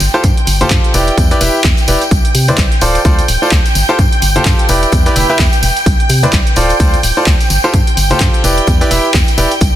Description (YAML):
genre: piano house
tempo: 128 BPM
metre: 4/4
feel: swing 58% on 16ths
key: unclear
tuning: A4 = 440 Hz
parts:
  - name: string machine, violins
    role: sustained chords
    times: 0.0-9.8 s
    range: G5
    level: -18 LUFS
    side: right 1 dB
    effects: ensemble chorus, sidechain pumping
  - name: organ-like FM bass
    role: bass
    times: 0.0-9.7 s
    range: D1 to C3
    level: -15 LUFS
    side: equal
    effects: sidechain pumping
  - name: punchy analog drum machine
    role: drums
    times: 0.0-9.7 s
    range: handclaps, hi-hat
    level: -19 LUFS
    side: right 1 dB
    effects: none
  - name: tambourine and congas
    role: percussion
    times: 0.0-9.7 s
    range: none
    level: -21 LUFS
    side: left 4 dB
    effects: none
  - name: bright baby grand piano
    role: riff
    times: 0.1-9.5 s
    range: E4 to E5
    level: -16 LUFS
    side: right 1 dB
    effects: sidechain pumping, tape echo
  - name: electronic kick drum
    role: drums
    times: 0.2-9.7 s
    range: none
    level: -13 LUFS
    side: equal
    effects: overdrive
room: little or no reverb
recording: dense, heavily limited modern master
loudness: -9 LUFS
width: side -12 dB against mid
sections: 0.0-9.8 A section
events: none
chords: 0.0 G9sus4; 0.9 Em7; 2.1 Cmaj9; 2.8 Dm7; 3.8 G9sus4; 4.7 Em7; 5.9 Cmaj9; 6.6 Dm7; 7.5 G9sus4; 8.4 Em7